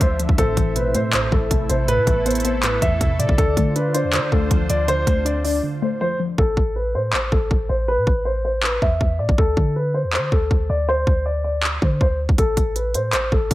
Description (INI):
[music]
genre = hip hop, trap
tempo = 160 BPM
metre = 4/4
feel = half-time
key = A minor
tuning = A4 = 439 Hz
[part]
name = dark concert grand piano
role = melody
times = 0.0-13.5 s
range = A4 to E5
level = -22 LUFS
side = left 1 dB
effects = low-pass filter
[part]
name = warbly dusty pluck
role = accompaniment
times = 0.0-6.4 s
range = A2 to D4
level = -25 LUFS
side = left 1 dB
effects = chorus, low-pass filter
[part]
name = sweeping resonant pad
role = sustained chords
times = 0.0-6.4 s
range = D3 to E5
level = -30 LUFS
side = equal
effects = chorus
[part]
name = clean 808-style bass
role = bass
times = 0.0-13.5 s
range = A1 to D3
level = -23 LUFS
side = equal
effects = none
[part]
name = trap drum kit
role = drums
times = 0.0-13.5 s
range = handclaps, hi-hat, kick drum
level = -20 LUFS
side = equal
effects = none
[part]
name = soft octave-layered synth lead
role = second line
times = 0.4-5.6 s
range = B4 to D5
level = -30 LUFS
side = equal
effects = chorus, tape echo
[sound]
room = little or no reverb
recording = none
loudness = -17 LUFS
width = side -16 dB against mid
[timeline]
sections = 0.0-6.4 A section; 6.4-13.5 B section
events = break 5.6-6.4; hi-hats muted 6.4-12.4; filter sweep 6.4-13.5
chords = 0.4 Amadd9; 3.4 Dm7; 6.4 Asus2; 9.4 D5; 12.4 N.C.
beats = 0.01 | 0.38 0.76 1.13 1.51 | 1.88 2.26 2.63 3.01 | 3.38 3.76 4.13 4.51 | 4.88 5.26 5.63 6.01 | 6.38 6.76 7.13 7.51 | 7.88 8.26 8.63 9.01 | 9.38 9.76 10.13 10.51 | 10.88 11.26 11.63 12.01 | 12.38 12.76 13.13 13.51